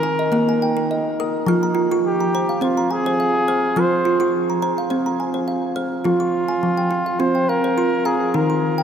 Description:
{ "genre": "world meditative, meditative tuned percussion", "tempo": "105 BPM", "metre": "4/4", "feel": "straight", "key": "F minor", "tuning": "A4 = 443 Hz", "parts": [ { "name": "trumpet with bucket mute", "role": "melody", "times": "0.0-8.8 s", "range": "F4 to C5", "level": "-22 LUFS", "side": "left 1 dB", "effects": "none" }, { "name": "kalimba", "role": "arpeggios", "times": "0.0-8.8 s", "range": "Eb3 to F6", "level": "-19 LUFS", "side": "right 1 dB", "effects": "none" } ], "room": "wet cathedral reverb, RT60 6.9 s", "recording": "in a vast, echoing space", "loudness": "-17 LUFS", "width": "side -8 dB against mid", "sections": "0.0-6.1 A section; 6.1-8.8 B section", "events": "none", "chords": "0.0 Eb; 1.5 Fm", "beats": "0.33 0.90 | 1.47 2.04 2.62 3.19 | 3.76 4.33 4.91 5.48 | 6.05 6.62 7.20 7.77 | 8.34" }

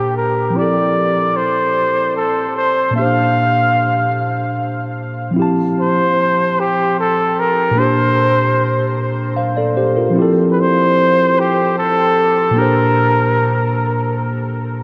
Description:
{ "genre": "R&B", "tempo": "50 BPM (dotted quarters)", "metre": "6/8", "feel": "straight", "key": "F major", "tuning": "A4 = 441 Hz", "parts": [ { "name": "breathy flugelhorn", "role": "melody", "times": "0.0-14.2 s", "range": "G4 to F5", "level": "-18 LUFS", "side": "equal", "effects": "tape echo" }, { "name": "mellow tine electric piano", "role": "accompaniment", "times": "0.0-14.8 s", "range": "Bb2 to A5", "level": "-19 LUFS", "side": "equal", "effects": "none" } ], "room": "wet huge ambient reverb, RT60 7.1 s", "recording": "dreamy mix soaked in reverb", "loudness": "-16 LUFS", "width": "mono", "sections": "0.0-5.4 A section; 5.4-14.8 B section", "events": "none", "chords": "0.0 Bb69; 0.6 Fmaj9; 3.0 Bb69; 5.4 Fmaj9; 7.8 Bb69; 10.2 Fmaj9; 12.6 Bb69", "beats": "| 0.56 1.76 | 2.96 4.16 | 5.36 6.56 | 7.76 8.96 | 10.16 11.36 | 12.56 13.76" }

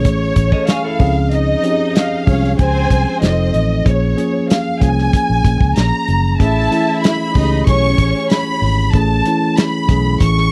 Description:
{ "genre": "lush 1970s-style soul", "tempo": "94 BPM", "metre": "4/4", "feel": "straight", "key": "unclear", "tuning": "A4 = 440 Hz", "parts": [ { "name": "dark symphonic violin section", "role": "melody", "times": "0.0-10.5 s", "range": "C#5 to C#6", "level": "-22 LUFS", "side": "equal", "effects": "none" }, { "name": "tine electric piano", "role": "accompaniment", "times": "0.0-10.5 s", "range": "E3 to A4", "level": "-21 LUFS", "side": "equal", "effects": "none" }, { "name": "vintage muted fingered electric bass", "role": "bass", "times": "0.0-10.5 s", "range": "F1 to Db2", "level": "-19 LUFS", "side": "equal", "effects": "none" }, { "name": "warm soul drum kit", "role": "drums", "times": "0.0-10.5 s", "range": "hi-hat, kick drum, snare drum", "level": "-17 LUFS", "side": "equal", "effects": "none" }, { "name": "electric guitar through a small old amp", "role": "riff", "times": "0.5-1.1 s", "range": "E4 to Eb5", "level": "-26 LUFS", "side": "equal", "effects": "none" }, { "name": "dark studio string section", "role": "second line", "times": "1.3-8.6 s", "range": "C4 to E5", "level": "-24 LUFS", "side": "equal", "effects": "none" } ], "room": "light reverb", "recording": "dry, close 1970s-style studio recording", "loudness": "-15 LUFS", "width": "mono", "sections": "0.0-10.5 A section", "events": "none", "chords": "0.0 Amaj7; 1.0 Dbmaj7; 3.2 F7; 3.9 Bbm7; 6.4 Amaj7", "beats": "0.05 0.68 | 1.32 1.95 2.59 3.22 | 3.86 4.49 5.13 5.76 | 6.40 7.03 7.67 8.30 | 8.94 9.57 10.21" }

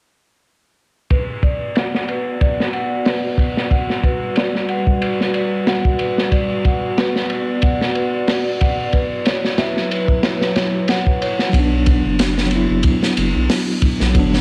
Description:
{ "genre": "trip hop", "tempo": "92 BPM", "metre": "4/4", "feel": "swing 55% on 16ths", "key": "B minor", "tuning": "A4 = 440 Hz", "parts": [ { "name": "warbly tape-like pad", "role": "sustained chords", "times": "2.0-11.5 s", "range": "F#3 to D5", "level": "-25 LUFS", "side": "equal", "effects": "chorus, built-in reverb, vintage 12-bit sampler grit" }, { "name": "large celesta", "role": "arpeggios", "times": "1.1-11.6 s", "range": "B4 to F#5", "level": "-27 LUFS", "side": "equal", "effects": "low-pass filter, analog delay" }, { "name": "crunchy breakbeat drum kit", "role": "drums", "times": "1.1-14.4 s", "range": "hi-hat, kick drum, ride cymbal, snare drum", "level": "-20 LUFS", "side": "equal", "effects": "low-pass filter on kick, cassette tape, low-pass filter on cymbals, low-pass filter on hats, low-pass filter on snare, low-pass filter on room" }, { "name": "bell-like tine electric piano", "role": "accompaniment", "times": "11.5-14.4 s", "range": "F#3 to E4", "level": "-20 LUFS", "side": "equal", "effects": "tremolo, low-pass filter" }, { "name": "round analog bass", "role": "bass", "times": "11.5-14.4 s", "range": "F#1 to B1", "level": "-22 LUFS", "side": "equal", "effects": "none" } ], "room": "light reverb", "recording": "home recording on cassette", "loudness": "-18 LUFS", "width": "mono", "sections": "1.1-11.5 A section; 11.5-14.4 B section", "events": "filter sweep on ambient pad 1.1-11.5; filter sweep on celesta 1.1-11.5", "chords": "1.1 Bm; 3.7 Gmaj7; 6.3 Bm; 8.9 F#7sus4; 11.5 Bm", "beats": "| 1.11 1.76 2.41 3.06 | 3.71 4.37 5.02 5.67 | 6.32 6.98 7.63 8.28 | 8.93 9.58 10.24 10.89 | 11.54 12.19 12.85 13.50 | 14.15" }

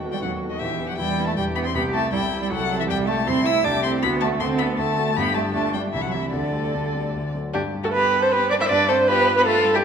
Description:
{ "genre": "quick classical-period movement for piano quartet", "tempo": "157 BPM", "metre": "3/4", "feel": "rubato", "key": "G major", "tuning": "A4 = 440 Hz", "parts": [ { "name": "dark grand piano", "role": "accompaniment", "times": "0.0-9.8 s", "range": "E1 to B4", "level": "-27 LUFS", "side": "left 1 dB", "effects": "none" }, { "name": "warm viola", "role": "accompaniment", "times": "0.0-9.8 s", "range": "D4 to E5", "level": "-23 LUFS", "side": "right 2 dB", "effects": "none" }, { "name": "rich violin", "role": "melody", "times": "0.1-9.8 s", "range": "D4 to E6", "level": "-26 LUFS", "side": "left 9 dB", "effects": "none" }, { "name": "rich cello", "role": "second line", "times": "0.1-9.8 s", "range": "D3 to E4", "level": "-25 LUFS", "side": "right 4 dB", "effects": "none" } ], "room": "wet recital hall reverb, RT60 1.8 s", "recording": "minimal, uncompressed stereo recording", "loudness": "-19 LUFS", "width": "side -7 dB against mid", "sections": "0.0-7.5 A section; 7.5-9.8 B section", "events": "none", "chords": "0.0 B7/D#; 0.6 Em; 1.7 C; 4.0 D; 5.2 G5; 5.9 C; 6.3 Dsus4; 7.1 D; 7.5 G; 8.7 G7", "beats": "0.22 | 0.60 0.99 1.37 | 1.75 2.13 2.50 | 2.88 3.27 3.65 | 4.03 4.41 4.78 | 5.16 5.54 5.93 | 6.33 6.74 7.14 | 7.54 7.93 8.32 | 8.70 9.08 9.46 | 9.84" }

